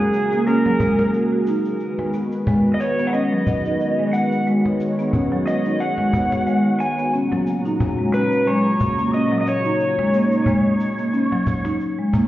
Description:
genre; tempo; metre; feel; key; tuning
organic downtempo; 90 BPM; 4/4; swing 55% on 16ths; G# minor; A4 = 436 Hz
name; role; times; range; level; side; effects
overdriven slide guitar; melody; 0.0-11.8 s; G#4 to G#5; -23 LUFS; equal; digital delay
warm analog pad; sustained chords; 0.0-12.3 s; A#2 to A#5; -24 LUFS; right 1 dB; chorus, tremolo
cabasa; drums; 0.1-12.3 s; none; -54 LUFS; right 1 dB; none
marimba with medium mallets; arpeggios; 0.3-12.3 s; F#3 to F#4; -20 LUFS; equal; low-pass filter, ping-pong delay
cajon; percussion; 0.7-12.3 s; none; -24 LUFS; equal; none
room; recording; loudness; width
moderate lush hall reverb, RT60 2.6 s; heard muffled through a wall, stone room reverb, EQ; -17 LUFS; side -14 dB against mid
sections
0.0-12.3 A section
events
none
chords
0.0 F#; 1.8 G#m7; 7.1 D#m7

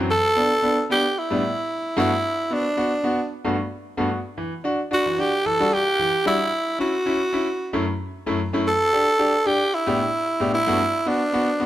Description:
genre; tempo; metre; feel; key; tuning
disco; 112 BPM; 4/4; straight; unclear; A4 = 439 Hz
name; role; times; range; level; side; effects
bright concert grand piano; accompaniment; 0.0-11.7 s; F#2 to G4; -24 LUFS; left 1 dB; none
growling tenor saxophone; melody; 0.1-11.7 s; D4 to A4; -20 LUFS; right 1 dB; none
room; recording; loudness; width
light reverb; none; -19 LUFS; side -13 dB against mid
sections
0.1-11.7 A section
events
none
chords
0.1 Asus4; 2.0 Gmaj7; 4.4 Em7; 6.5 F#m7; 8.7 A7sus4; 10.5 Gmaj7 (rootless)

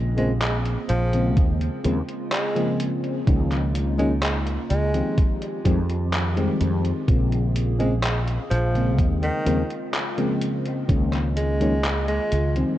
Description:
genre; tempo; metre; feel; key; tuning
vaporwave; 63 BPM; 4/4; straight; unclear; A4 = 442 Hz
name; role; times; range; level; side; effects
mellow FM electric piano; accompaniment; 0.0-12.8 s; Db3 to G4; -26 LUFS; left 1 dB; lush chorus, tape echo
warbly tape-like pad; sustained chords; 0.0-12.8 s; Db3 to Ab4; -34 LUFS; right 1 dB; chorus, built-in reverb
fretless electric bass; bass; 0.0-12.6 s; Bb1 to F2; -23 LUFS; equal; ensemble chorus
breathy tenor saxophone; melody; 0.2-12.7 s; Eb3 to Ab3; -29 LUFS; right 1 dB; tape echo
detuned 8-bit digital drum machine; drums; 0.2-12.7 s; handclaps, hi-hat; -30 LUFS; equal; overdrive, vintage 12-bit sampler grit, gated reverb
electronic kick drum; drums; 1.4-11.1 s; none; -21 LUFS; equal; vintage 12-bit sampler grit
room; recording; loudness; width
light reverb; cassette tape; -20 LUFS; side -13 dB against mid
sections
0.0-12.8 A section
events
none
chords
0.0 Bbm9; 1.4 Eb13sus4; 3.3 Db69; 5.2 Fm9; 7.1 Bbm9; 9.0 Eb13sus4; 10.9 Db69

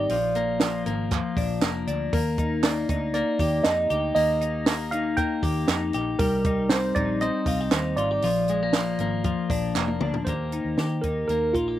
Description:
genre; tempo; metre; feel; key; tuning
jangly indie pop; 118 BPM; 4/4; straight; Eb major; A4 = 438 Hz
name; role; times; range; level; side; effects
tine electric piano; melody; 0.0-11.8 s; F4 to G5; -26 LUFS; right 2 dB; phaser, slapback echo
twelve-string electric guitar; arpeggios; 0.0-11.8 s; F3 to G4; -27 LUFS; left 4 dB; slapback echo
vintage muted fingered electric bass; bass; 0.0-11.8 s; F1 to Eb3; -31 LUFS; right 1 dB; none
compact cocktail drum kit; drums; 0.1-11.7 s; hi-hat, kick drum, snare drum, toms; -27 LUFS; right 2 dB; none
group handclap; percussion; 0.6-9.9 s; none; -32 LUFS; right 10 dB; slapback echo
room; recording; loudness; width
little or no reverb; recorded outdoors, with no room sound; -22 LUFS; side -13 dB against mid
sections
0.0-10.3 A section; 10.3-11.8 B section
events
drum fill 9.8-10.3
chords
0.1 Bb; 2.1 Eb; 6.2 Cm; 8.2 Bb; 10.3 Eb

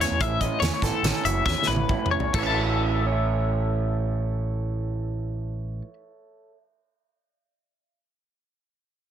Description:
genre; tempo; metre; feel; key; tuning
math rock and midwest emo; 131-152 BPM; 5/4; straight; A major; A4 = 441 Hz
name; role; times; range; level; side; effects
electric guitar through a small old amp; accompaniment; 0.0-6.6 s; E2 to E5; -30 LUFS; right 8 dB; spring reverb
twangy electric guitar; arpeggios; 0.0-5.9 s; A4 to A5; -27 LUFS; left 8 dB; tremolo
overdriven picked electric bass; bass; 0.0-5.8 s; F#1 to E2; -27 LUFS; equal; none
loose indie drum kit; drums; 0.0-2.4 s; crash cymbal, hi-hat, kick drum, snare drum, toms; -28 LUFS; right 1 dB; none
room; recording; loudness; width
light reverb; dense, heavily limited modern master; -22 LUFS; side -9 dB against mid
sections
0.0-2.3 A section; 2.3-6.9 B section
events
slowing down 0.0-2.3; drum fill 1.4-2.3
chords
0.0 A69; 2.3 A6

